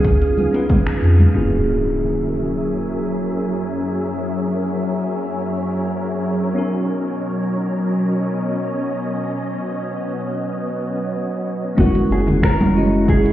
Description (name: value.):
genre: sunset chillout.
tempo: 92 BPM.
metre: 4/4.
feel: straight.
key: unclear.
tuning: A4 = 440 Hz.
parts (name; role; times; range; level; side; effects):
nylon-string guitar; melody; 0.0-0.7, 11.8-13.3 s; F#4 to A#4; -23 LUFS; left 1 dB; tape echo.
bell-like tine electric piano; accompaniment; 0.0-13.3 s; G#3 to D#5; -23 LUFS; right 1 dB; auto-pan, ping-pong delay.
soft string machine; sustained chords; 0.0-13.3 s; F#2 to D#6; -23 LUFS; equal; phaser, ensemble chorus.
warm sub bass; bass; 0.0-1.3, 11.8-13.3 s; F#1 to E#2; -16 LUFS; equal; none.
deep house drum kit; drums; 0.0-1.5, 11.8-13.3 s; cabasa, crash cymbal, finger snaps, hi-hat, toms; -24 LUFS; right 1 dB; overdrive, low-pass filter on hats, low-pass filter on perc, low-pass filter on toms, low-pass filter on snare, low-pass filter on cymbals.
electronic kick drum; drums; 0.0-0.8, 11.8-13.2 s; none; -18 LUFS; equal; overdrive.
congas and bongos; percussion; 0.4-1.3, 12.3-12.7 s; none; -23 LUFS; right 1 dB; none.
impact; sound effects; 1.3-4.0 s; none; -24 LUFS; equal; none.
wind-like tuned noise texture; texture; 2.2-11.8 s; C#4 to C#5; -32 LUFS; left 1 dB; built-in reverb.
room: wet lush hall reverb, RT60 2.5 s.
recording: heard muffled through a wall, stone room reverb, EQ.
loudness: -17 LUFS.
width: side -13 dB against mid.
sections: 0.0-1.3 A section; 1.3-11.8 B section; 11.8-13.3 A section.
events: band accent 0.9-1.2; impact 1.3-4.0; filter sweep on drum 1.3-11.8.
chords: 0.0 C#7; 1.3 F#7; 6.6 Bmaj7; 11.8 F#7.